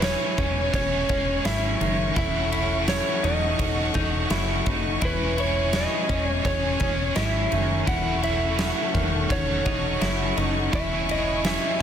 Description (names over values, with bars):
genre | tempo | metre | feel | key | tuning
dream pop | 84 BPM | 4/4 | straight | unclear | A4 = 440 Hz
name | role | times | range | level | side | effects
electric slide guitar | melody | 0.0-11.8 s | B4 to F#5 | -28 LUFS | right 1 dB | digital delay
biting overdriven guitar | accompaniment | 0.0-11.8 s | E3 to G#4 | -30 LUFS | right 5 dB | tremolo, lush chorus
warm studio string section | sustained chords | 0.0-11.8 s | C#4 to C#6 | -30 LUFS | left 2 dB | none
direct-recorded clean electric guitar | arpeggios | 0.0-11.8 s | D#3 to E4 | -29 LUFS | left 3 dB | wide subtle chorus, digital delay
plucky analog bass | bass | 0.0-11.6 s | E1 to G#1 | -28 LUFS | equal | none
huge arena drum kit | drums | 0.0-11.6 s | kick drum, ride cymbal, snare drum, tambourine | -28 LUFS | equal | none
room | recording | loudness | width
light reverb, small room ambience | dense, heavily limited modern master | -21 LUFS | side -9 dB against mid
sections
0.0-11.8 A section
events
none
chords
0.0 C#m/E; 2.2 F#m7/E; 5.0 C#m/E; 7.9 F#m7/E; 10.7 C#m/E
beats
0.02 0.73 1.45 | 2.16 2.88 3.59 4.30 | 5.02 5.73 6.45 7.16 | 7.88 8.59 9.30 10.02 | 10.73 11.45